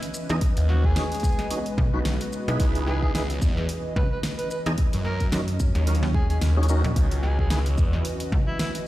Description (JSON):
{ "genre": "glitch hop", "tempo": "110 BPM", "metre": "4/4", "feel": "swing 57% on 16ths", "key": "C# dorian", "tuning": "A4 = 440 Hz", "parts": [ { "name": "dark analog pad", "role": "sustained chords", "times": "0.0-8.9 s", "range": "E3 to D#5", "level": "-34 LUFS", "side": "equal", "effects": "chorus, sidechain pumping" }, { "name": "pop drum kit", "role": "drums", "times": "0.0-8.8 s", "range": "hi-hat, shaker, snare drum", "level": "-32 LUFS", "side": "equal", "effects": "none" }, { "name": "granular cloud pad", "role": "texture", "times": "0.0-8.9 s", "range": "E3 to D#5", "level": "-36 LUFS", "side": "equal", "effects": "built-in reverb, sidechain pumping" }, { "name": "tonewheel organ", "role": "stabs", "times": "0.3-7.6 s", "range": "C#4 to D#5", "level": "-32 LUFS", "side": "right 1 dB", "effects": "overdrive, chorus vibrato, slow rotary speaker, sidechain pumping, tape echo" }, { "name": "slap-like FM bass", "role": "bass", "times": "0.3-8.5 s", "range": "A#1 to F#2", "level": "-25 LUFS", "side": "equal", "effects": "none" }, { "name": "electronic kick drum", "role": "drums", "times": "0.4-8.4 s", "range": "none", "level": "-24 LUFS", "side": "equal", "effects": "none" }, { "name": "phased detuned saw bass", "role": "bass", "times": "0.6-8.0 s", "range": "B1 to F#2", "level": "-23 LUFS", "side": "equal", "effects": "phaser, tube saturation" }, { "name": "overdriven harmonica", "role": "melody", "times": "0.7-8.7 s", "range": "E4 to B4", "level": "-35 LUFS", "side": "equal", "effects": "tape echo" } ], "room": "little or no reverb", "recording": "played on a big sound system in a bare room, stone room reverb", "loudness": "-21 LUFS", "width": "side -16 dB against mid", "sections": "0.0-8.9 A section", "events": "none", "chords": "0.4 B6; 2.6 C#m9; 4.8 D#m7; 7.0 C#m9", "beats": "| 0.42 0.96 1.51 2.05 | 2.60 3.15 3.69 4.24 | 4.78 5.33 5.87 6.42 | 6.96 7.51 8.05 8.60" }